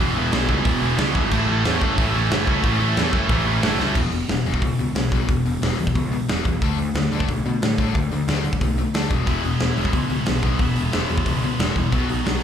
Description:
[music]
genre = punk rock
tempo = 181 BPM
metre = 4/4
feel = straight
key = E major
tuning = A4 = 440 Hz
[part]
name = distorted electric guitar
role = riff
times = 0.0-12.4 s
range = E2 to D4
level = -25 LUFS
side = left 8 dB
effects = distortion
[part]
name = heavy high-gain guitar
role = riff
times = 0.0-4.0, 9.3-12.4 s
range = A2 to E4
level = -26 LUFS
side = right 1 dB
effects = distortion, slapback echo
[part]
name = tight distorted guitar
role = riff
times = 0.0-4.0 s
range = E2 to A3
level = -24 LUFS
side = right 13 dB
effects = distortion
[part]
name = fuzz picked electric bass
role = bass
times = 0.0-12.4 s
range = E1 to D3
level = -24 LUFS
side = right 1 dB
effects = overdrive
[part]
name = big rock drum kit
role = drums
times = 0.3-12.3 s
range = crash cymbal, hi-hat, kick drum, snare drum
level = -23 LUFS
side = right 1 dB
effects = none
[sound]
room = little or no reverb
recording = live gig heard through the venue's PA, club reverb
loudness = -18 LUFS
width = side -8 dB against mid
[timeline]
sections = 0.0-4.0 A section; 4.0-12.4 B section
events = drum fill 3.8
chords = 0.0 E; 1.3 A; 4.0 E5; 6.6 D5; 9.1 E; 11.9 B

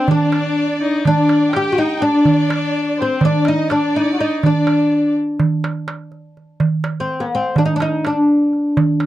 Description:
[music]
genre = Turkish makam ensemble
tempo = 249 BPM (eighths)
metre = 9/8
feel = straight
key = unclear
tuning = A4 = 440 Hz
[part]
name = oud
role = melody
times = 0.0-9.1 s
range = B3-40c to G4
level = -16 LUFS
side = left 1 dB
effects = none
[part]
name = clear kamancheh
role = second line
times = 0.0-5.2 s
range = C4 to G4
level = -23 LUFS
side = left 5 dB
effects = none
[part]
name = warm studio violin section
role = second line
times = 0.0-5.1 s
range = C5 to G5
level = -26 LUFS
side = right 2 dB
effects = none
[part]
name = darbuka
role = percussion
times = 0.1-9.1 s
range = none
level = -18 LUFS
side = right 3 dB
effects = none
[sound]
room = little or no reverb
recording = dry, close 1970s-style studio recording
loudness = -14 LUFS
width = side -14 dB against mid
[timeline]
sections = 0.0-6.6 A section; 6.6-9.1 B section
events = none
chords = none

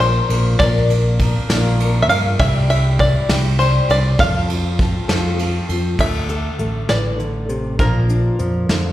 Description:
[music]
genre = indie folk with a building arrangement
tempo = 67 BPM (dotted quarters)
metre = 6/8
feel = straight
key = unclear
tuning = A4 = 442 Hz
[part]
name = bluegrass banjo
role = melody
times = 0.0-8.4 s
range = Bb4 to F5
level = -20 LUFS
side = equal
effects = slapback echo
[part]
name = picked twelve-string acoustic guitar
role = accompaniment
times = 0.0-6.0 s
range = Bb2 to Bb4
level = -24 LUFS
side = left 5 dB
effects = slapback echo
[part]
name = fingered electric bass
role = bass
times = 0.0-8.9 s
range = A1 to G2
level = -18 LUFS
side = equal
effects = none
[part]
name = soft brush drum kit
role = drums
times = 0.0-8.8 s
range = crash cymbal, hi-hat, kick drum, ride cymbal, snare drum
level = -21 LUFS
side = equal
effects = none
[part]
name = fingerpicked steel-string acoustic guitar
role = accompaniment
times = 6.0-8.9 s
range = Bb2 to A4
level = -22 LUFS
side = equal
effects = slapback echo
[sound]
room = studio reverb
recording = live gig heard through the venue's PA, recital hall reverb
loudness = -15 LUFS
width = side -14 dB against mid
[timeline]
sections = 0.0-6.0 A section; 6.0-8.9 B section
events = none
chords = 0.0 Bb; 2.4 Cadd9; 4.2 F; 6.0 Dsus2; 7.8 Bb

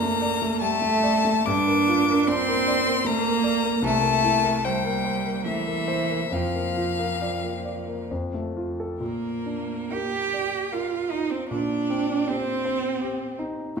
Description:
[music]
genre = classical, slow romantic movement for piano trio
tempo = 64-82 BPM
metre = 3/4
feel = rubato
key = Bb major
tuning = A4 = 440 Hz
[part]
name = clear violin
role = melody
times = 0.0-13.8 s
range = Bb4 to D6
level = -27 LUFS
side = left 8 dB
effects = none
[part]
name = rich cello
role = second line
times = 0.0-13.4 s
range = E3 to G4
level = -25 LUFS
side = right 5 dB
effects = none
[part]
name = warm concert grand piano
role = accompaniment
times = 0.0-13.8 s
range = C2 to D5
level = -28 LUFS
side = left 2 dB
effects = none
[sound]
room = wet recital hall reverb, RT60 1.4 s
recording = minimal, uncompressed stereo recording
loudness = -22 LUFS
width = side -5 dB against mid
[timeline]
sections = 0.0-9.0 A section; 9.0-13.8 B section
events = none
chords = 0.0 D/F#; 1.5 Gm7; 3.8 C7; 6.3 Bb/F; 8.1 F; 9.0 Bb; 11.5 Cm7/Bb

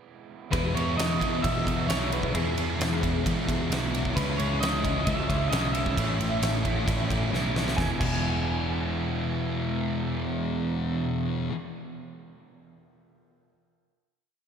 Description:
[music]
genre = rock, shoegaze and dream pop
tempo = 132 BPM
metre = 4/4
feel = straight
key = E major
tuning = A4 = 445 Hz
[part]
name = electric guitar through a small old amp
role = melody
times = 0.5-11.4 s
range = G#4 to G#5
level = -33 LUFS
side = right 1 dB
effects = wide subtle chorus, diffuse ambient delay
[part]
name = biting overdriven guitar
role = riff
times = 0.5-11.5 s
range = E2 to E4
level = -31 LUFS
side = right 6 dB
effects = reverse reverb
[part]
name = thick fuzz guitar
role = riff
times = 0.5-11.5 s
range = E2 to C#4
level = -31 LUFS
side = left 6 dB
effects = distortion, wide subtle chorus
[part]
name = vintage muted picked electric bass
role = bass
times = 0.5-11.4 s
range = E1 to E2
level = -31 LUFS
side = equal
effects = none
[part]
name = huge arena drum kit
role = drums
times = 0.5-8.1 s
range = crash cymbal, kick drum, ride cymbal, snare drum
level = -30 LUFS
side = equal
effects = none
[sound]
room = wet church reverb, RT60 3.4 s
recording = dreamy mix soaked in reverb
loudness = -24 LUFS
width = side -7 dB against mid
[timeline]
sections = 0.5-7.8 verse; 7.8-11.4 final chord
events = drum fill 7.3-7.8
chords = 0.5 E; 4.2 C#m9; 6.0 A; 7.8 E

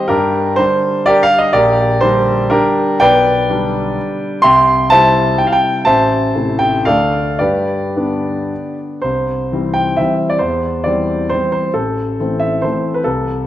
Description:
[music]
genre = classical, romantic triple-time dance for piano with dotted rhythms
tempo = 105-146 BPM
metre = 3/4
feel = rubato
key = C major from 3.0 s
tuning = A4 = 439 Hz
[part]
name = warm concert grand piano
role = solo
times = 0.0-13.5 s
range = A1 to C6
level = -12 LUFS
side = equal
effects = none
[sound]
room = moderate recital hall reverb, RT60 1.8 s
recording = none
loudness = -12 LUFS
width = side -13 dB against mid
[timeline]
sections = 0.0-9.0 A section; 9.0-13.5 B section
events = none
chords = 0.1 Gm; 1.5 Gm/Bb; 3.0 G/B; 4.4 C; 5.8 Am; 6.9 Dm; 7.4 G; 9.0 C; 10.4 C/E; 11.7 Am

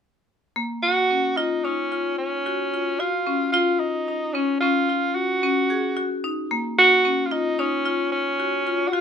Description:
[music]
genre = progressive instrumental, progressive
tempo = 222 BPM (eighths)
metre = 11/8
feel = straight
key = F# major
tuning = A4 = 441 Hz
[part]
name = marimba with hard mallets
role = arpeggios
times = 0.6-9.0 s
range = A#3 to G#4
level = -24 LUFS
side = left 4 dB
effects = none
[part]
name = warm tenor saxophone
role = melody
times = 0.8-9.0 s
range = C#4 to F#4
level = -21 LUFS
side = right 2 dB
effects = none
[sound]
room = moderate studio reverb, RT60 0.6 s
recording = minimal, uncompressed stereo recording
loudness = -20 LUFS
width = side -7 dB against mid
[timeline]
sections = 0.6-9.0 A section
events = none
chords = 0.6 F#maj7

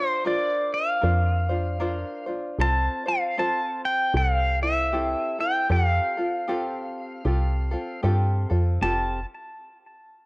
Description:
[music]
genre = Hawaiian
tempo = 77 BPM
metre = 4/4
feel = swing 60% on 8ths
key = F major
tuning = A4 = 440 Hz
[part]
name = pedal steel guitar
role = melody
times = 0.0-9.2 s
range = C5 to A5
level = -25 LUFS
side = equal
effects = cassette tape
[part]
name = tenor ukulele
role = accompaniment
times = 0.0-9.2 s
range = C4 to C5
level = -30 LUFS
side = equal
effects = cassette tape
[part]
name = woody FM bass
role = bass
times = 1.0-9.2 s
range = F1 to G2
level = -23 LUFS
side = equal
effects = none
[sound]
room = light reverb, small room ambience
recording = home recording on cassette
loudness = -22 LUFS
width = side -28 dB against mid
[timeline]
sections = 0.0-8.8 A section; 8.8-10.3 B section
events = none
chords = 0.0 Bbadd9; 2.6 F/C; 4.1 C6; 5.7 Fadd9

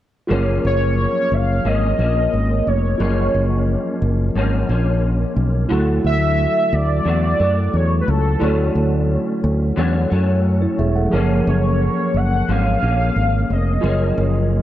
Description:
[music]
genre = indie pop, bedroom pop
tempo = 89 BPM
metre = 4/4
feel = straight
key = F# major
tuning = A4 = 440 Hz
[part]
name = electric guitar through a small old amp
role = accompaniment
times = 0.3-14.6 s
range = F#2 to C#4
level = -23 LUFS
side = left 3 dB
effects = ensemble chorus, vibrato effect
[part]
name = mellow tine electric piano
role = accompaniment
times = 0.3-14.6 s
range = E#3 to F#5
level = -25 LUFS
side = right 3 dB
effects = slow stereo tremolo, cassette tape
[part]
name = fingered electric bass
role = bass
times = 0.3-14.6 s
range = E1 to F#2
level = -18 LUFS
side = equal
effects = none
[part]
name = warm velvety synth lead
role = melody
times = 0.7-14.5 s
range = A4 to F#5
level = -22 LUFS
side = equal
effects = lush chorus, analog delay
[sound]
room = light reverb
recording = dark, warm production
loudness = -16 LUFS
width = side -13 dB against mid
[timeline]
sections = 0.3-14.6 A section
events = none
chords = 0.3 F#maj7; 5.7 Dmaj7; 11.1 F#maj7

